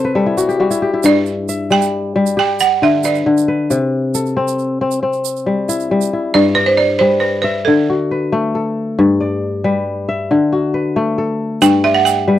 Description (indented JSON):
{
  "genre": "west african traditional, West African string and xylophone music",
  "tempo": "91 BPM (dotted quarters)",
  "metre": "12/8",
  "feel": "straight",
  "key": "G major",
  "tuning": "A4 = 444 Hz",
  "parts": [
    { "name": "kora", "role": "arpeggios", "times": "0.0-12.4 s", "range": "G2 to E5", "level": "-14 LUFS", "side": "left 2 dB", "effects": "none" },
    { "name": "egg shaker", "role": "percussion", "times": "0.4-6.1, 11.6-12.2 s", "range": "none", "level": "-26 LUFS", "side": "right 24 dB", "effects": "none" },
    { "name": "balafon", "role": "melody", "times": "1.1-12.4 s", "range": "A4 to G5", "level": "-15 LUFS", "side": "right 5 dB", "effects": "none" }
  ],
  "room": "little or no reverb",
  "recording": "dry, close 1970s-style studio recording",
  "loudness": "-13 LUFS",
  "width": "side -12 dB against mid",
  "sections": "0.0-6.3 A section; 6.3-12.4 B section",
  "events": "kora fill 0.0-1.0",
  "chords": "0.0 C5; 1.0 G; 3.7 C; 6.3 G; 7.7 D; 9.0 G; 10.3 D; 11.6 G"
}